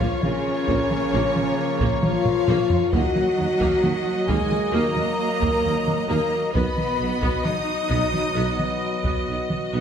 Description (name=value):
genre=cinematic, epic orchestral film score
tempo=66 BPM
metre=4/4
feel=straight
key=Eb minor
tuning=A4 = 440 Hz
part: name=rich symphonic violin section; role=melody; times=0.0-9.8 s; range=Db5 to Eb5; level=-31 LUFS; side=left 3 dB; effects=none
part: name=dark studio violin section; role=second line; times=0.0-8.8 s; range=Db5 to D#6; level=-31 LUFS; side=left 3 dB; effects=none
part: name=clear symphonic viola section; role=accompaniment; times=0.0-9.8 s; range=Bb3 to Gb4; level=-31 LUFS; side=right 2 dB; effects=none
part: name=clear trombone section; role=sustained chords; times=0.0-9.8 s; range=F3 to B3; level=-32 LUFS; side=right 2 dB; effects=none
part: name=dark French horn section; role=sustained chords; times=0.0-8.8 s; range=Db4 to D#5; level=-25 LUFS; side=left 3 dB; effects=none
part: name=clear trumpet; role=stabs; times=0.0-9.8 s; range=Db5 to D#5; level=-32 LUFS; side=equal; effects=none
part: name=rich studio double bass section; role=bass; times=0.0-9.8 s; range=Bb1 to Eb2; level=-30 LUFS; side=right 3 dB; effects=none
part: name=warm studio cello section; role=bass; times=0.0-8.8 s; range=Db3 to D#4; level=-30 LUFS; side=right 4 dB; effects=none
part: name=solo taiko drums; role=drums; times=0.0-9.8 s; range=none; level=-27 LUFS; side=equal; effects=none
part: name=timpani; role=percussion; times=0.0-0.6 s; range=none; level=barely audible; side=none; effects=none
part: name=dark tuba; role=bass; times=0.2-9.8 s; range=Bb1 to Eb2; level=-31 LUFS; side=right 4 dB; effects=none
room=wet scoring stage reverb, RT60 1.6 s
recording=none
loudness=-20 LUFS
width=side -8 dB against mid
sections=0.0-9.8 A section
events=drum fill 2.0-2.9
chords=0.0 Bbm; 2.9 Ebm; 6.5 B